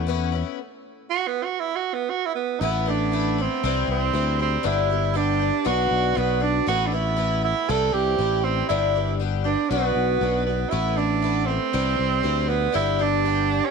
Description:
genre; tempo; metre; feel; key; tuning
folk rock and heartland rock; 118 BPM; 4/4; straight; unclear; A4 = 440 Hz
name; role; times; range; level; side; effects
clear tenor saxophone; melody; 0.0-13.7 s; B3 to A4; -23 LUFS; right 10 dB; none
picked twelve-string acoustic guitar; accompaniment; 0.0-13.7 s; G2 to G4; -27 LUFS; left 15 dB; none
modern bright fingered electric bass; bass; 0.0-13.6 s; G1 to E2; -25 LUFS; left 2 dB; none
room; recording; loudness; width
light reverb, small room reverb; 1960s-style stereo with parts hard left and right; -20 LUFS; side -5 dB against mid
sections
0.0-2.6 A section; 2.6-13.7 B section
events
tenor saxophone solo 0.0-2.6; stop 0.6-2.6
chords
0.0 Aadd9 (rootless); 2.6 Asus2; 3.6 C; 4.6 G; 5.7 Bm; 6.7 Asus2; 7.7 C; 8.7 G; 9.7 Bm; 10.7 Asus2; 11.7 C; 12.7 G

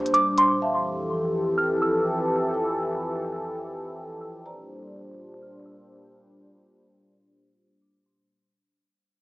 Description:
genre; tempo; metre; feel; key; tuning
hip hop, atmospheric cloud-rap; 125 BPM; 4/4; half-time; unclear; A4 = 440 Hz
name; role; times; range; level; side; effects
sweeping resonant pad; sustained chords; 0.0-8.3 s; F2 to C5; -26 LUFS; equal; chorus, low-pass filter
marimba with soft mallets; texture; 0.0-8.3 s; G4 to Bb5; -33 LUFS; equal; none
soft synth bell; melody; 0.1-8.3 s; C6 to F6; -23 LUFS; right 1 dB; chorus, phaser, low-pass filter, digital delay
electronic hi-hat; drums; 0.1-0.5 s; none; -40 LUFS; equal; none
room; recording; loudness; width
moderate lush hall reverb, RT60 1.8 s, digital ambience; small speaker sound; -22 LUFS; side -20 dB against mid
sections
0.0-8.3 A section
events
fade-out 0.0-8.3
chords
0.0 Bb69; 0.6 Fmaj9; 4.5 Bb69

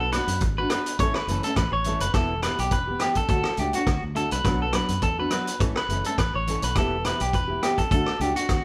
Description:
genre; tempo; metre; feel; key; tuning
highlife guitar band; 104 BPM; 4/4; swing 54% on 16ths; D major; A4 = 440 Hz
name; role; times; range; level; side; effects
nylon-string guitar; accompaniment; 0.0-8.5 s; E3 to A4; -32 LUFS; equal; none
electric guitar at the edge of break-up; arpeggios; 0.0-8.6 s; F#4 to C#5; -29 LUFS; equal; none
fingered electric bass; bass; 0.0-8.6 s; E1 to F#2; -32 LUFS; equal; none
vintage drum kit; drums; 0.1-8.6 s; hi-hat, kick drum, rim click; -29 LUFS; equal; none
room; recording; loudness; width
moderate stone room reverb, RT60 1.0 s; band playing live in one room; -24 LUFS; mono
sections
0.0-8.6 A section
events
none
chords
0.0 Bm; 1.0 A; 2.1 Em; 3.3 D; 4.5 Bm; 5.6 A; 6.8 Em; 7.9 D

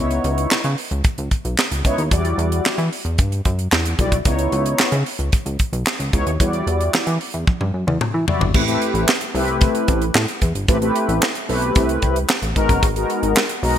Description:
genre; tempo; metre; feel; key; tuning
early-eighties boogie funk; 112 BPM; 4/4; straight; unclear; A4 = 440 Hz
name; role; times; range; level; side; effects
mellow synth brass; accompaniment; 0.0-13.8 s; F#3 to D5; -21 LUFS; left 1 dB; chorus
chorused synth bass; bass; 0.0-13.8 s; F#1 to E3; -21 LUFS; equal; none
tight funk drum kit; drums; 0.1-13.8 s; crash cymbal, handclaps, hi-hat, kick drum, snare drum, toms; -19 LUFS; equal; gated reverb
room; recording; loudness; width
light reverb, studio reverb; bright 1980s-style digital production; -17 LUFS; side -10 dB against mid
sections
0.0-8.5 A section; 8.5-13.8 B section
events
drum fill 7.5-8.5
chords
0.0 C#m9; 2.1 Em9; 4.3 C#m9; 6.4 Em9; 8.5 Am9; 12.6 G#m9

